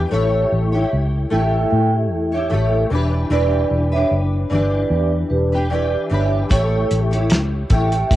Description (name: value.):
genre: indie pop, bedroom pop.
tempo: 75 BPM.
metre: 4/4.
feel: swing 55% on 16ths.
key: unclear.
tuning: A4 = 440 Hz.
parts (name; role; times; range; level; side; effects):
picked steel-string acoustic guitar; accompaniment; 0.0-8.2 s; E3 to C#5; -22 LUFS; left 2 dB; ensemble chorus, warbly pitch drift.
vintage muted fingered electric bass; bass; 0.0-8.2 s; E1 to A2; -19 LUFS; equal; none.
vibraphone with soft mallets; second line; 0.1-8.2 s; G4 to G5; -22 LUFS; right 3 dB; wide subtle chorus, analog delay.
cloth-damped thuddy drum kit; drums; 6.5-8.2 s; hi-hat, kick drum, snare drum; -17 LUFS; equal; cassette tape.
room: light reverb.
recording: home recording on cassette.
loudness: -16 LUFS.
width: side -14 dB against mid.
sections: 0.1-8.2 A section.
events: none.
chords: 0.1 A7; 2.9 Em7; 6.5 A7.